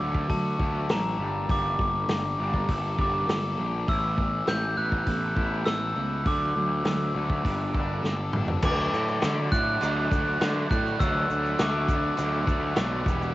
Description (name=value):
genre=indie rock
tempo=101 BPM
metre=4/4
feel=straight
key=D major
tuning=A4 = 440 Hz
part: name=glockenspiel with soft plastic mallets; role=melody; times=0.0-12.1 s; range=A5 to G6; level=-29 LUFS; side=equal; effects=cassette tape, tape echo
part: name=distorted electric guitar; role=riff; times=0.0-13.3 s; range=E2 to A4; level=-36 LUFS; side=left 6 dB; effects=overdrive
part: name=overdriven semi-hollow guitar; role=riff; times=0.0-13.3 s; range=D3 to E4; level=-34 LUFS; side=right 3 dB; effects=wide subtle chorus
part: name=fuzz picked electric bass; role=bass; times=0.0-13.3 s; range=E1 to D3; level=-29 LUFS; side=equal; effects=overdrive
part: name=vintage drum kit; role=drums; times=0.1-13.2 s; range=crash cymbal, hi-hat, kick drum, snare drum, toms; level=-28 LUFS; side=equal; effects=cassette tape
part: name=overdriven tine electric piano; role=second line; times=8.6-12.2 s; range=A4 to D5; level=-41 LUFS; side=right 2 dB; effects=none
part: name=tube shaker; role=percussion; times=8.6-13.3 s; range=none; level=-51 LUFS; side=right 7 dB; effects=none
room=light reverb, studio reverb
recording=home recording on cassette, vinyl crackle, nothing above 7.8 kHz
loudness=-24 LUFS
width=side -16 dB against mid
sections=0.0-8.6 A section; 8.6-13.3 B section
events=drum fill 8.0-8.6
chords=0.0 D; 1.2 Gmadd9; 3.9 Asus2; 6.3 D; 7.4 Gmadd9; 8.6 D